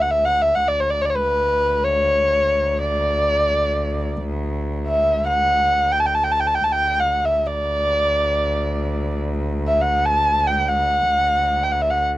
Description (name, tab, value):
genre	turkish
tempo	free time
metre	none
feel	none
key	D makam rast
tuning	A4 = 438 Hz
part	dark erhu	melody	0.0-12.0 s	B4 to A5	-18 LUFS	equal	none
part	rich cello	drone	0.0-12.2 s	D2	-25 LUFS	equal	none
room	little or no reverb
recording	dry, close 1970s-style studio recording, faint mains hum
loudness	-17 LUFS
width	side -15 dB against mid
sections	0.0-12.2 A section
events	none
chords	none